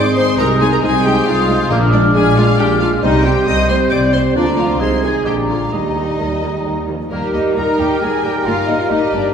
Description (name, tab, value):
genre	quick classical-period movement for symphony orchestra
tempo	135 BPM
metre	3/4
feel	straight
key	Eb major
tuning	A4 = 439 Hz
part	rich studio violin section	melody	0.0-9.3 s	Bb4 to Eb6	-24 LUFS	left 4 dB	none
part	hollow flute section	second line	0.0-9.3 s	Bb4 to Ab6	-23 LUFS	left 1 dB	none
part	mellow oboe	second line	0.0-9.3 s	Bb4 to Eb5	-25 LUFS	equal	none
part	rich studio violin section	second line	0.0-9.3 s	Bb3 to Eb5	-25 LUFS	left 4 dB	none
part	warm clarinet	second line	0.0-9.3 s	Bb3 to Eb5	-22 LUFS	left 1 dB	none
part	dark studio viola section	accompaniment	0.0-9.2 s	D3 to Eb4	-23 LUFS	right 1 dB	none
part	mellow bassoon	accompaniment	0.0-9.3 s	F3 to Ab3	-22 LUFS	right 5 dB	none
part	mellow French horn section	sustained chords	0.0-9.3 s	F3 to Eb4	-22 LUFS	left 4 dB	none
part	warm studio cello section	bass	0.0-9.3 s	Eb2 to Bb4	-22 LUFS	right 3 dB	none
part	warm studio double bass section	bass	0.0-9.2 s	G1 to Eb2	-22 LUFS	right 1 dB	none
part	timpani	percussion	1.7-2.3 s	Bb2	-21 LUFS	left 1 dB	none
part	mellow trumpet section	stabs	7.1-9.3 s	Bb4	-23 LUFS	left 3 dB	none
room	wet scoring stage reverb, RT60 1.8 s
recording	heard from further back in the room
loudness	-13 LUFS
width	side -7 dB against mid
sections	0.0-7.1 A section; 7.1-9.3 A section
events	none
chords	0.4 Ab/C; 1.7 Bb7; 3.0 C5; 4.4 Bb/D; 4.8 Ab/C; 5.3 Bb7; 5.7 Eb; 8.5 Eb/G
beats	| 0.39 0.83 1.27 | 1.71 2.15 2.59 | 3.03 3.47 3.91 | 4.36 4.80 5.25 | 5.72 6.19 6.65 | 7.11 7.57 8.02 | 8.46 8.91